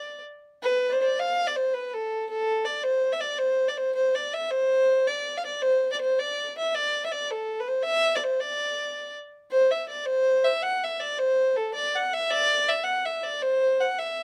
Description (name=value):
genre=celtic folk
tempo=108 BPM (dotted quarters)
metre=6/8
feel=straight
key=D dorian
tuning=A4 = 440 Hz
part: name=dark fiddle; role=solo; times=0.0-14.2 s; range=A4 to F#5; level=-26 LUFS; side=equal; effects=none
room=light reverb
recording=none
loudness=-26 LUFS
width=mono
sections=0.6-9.5 A section; 9.5-14.2 B section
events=none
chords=none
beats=0.04 | 0.59 1.15 | 1.71 2.26 | 2.82 3.37 | 3.93 4.49 | 5.04 5.60 | 6.16 6.71 | 7.27 7.83 | 8.38 8.94 | 9.50 10.05 | 10.61 11.17 | 11.72 12.28 | 12.84 13.40 | 13.95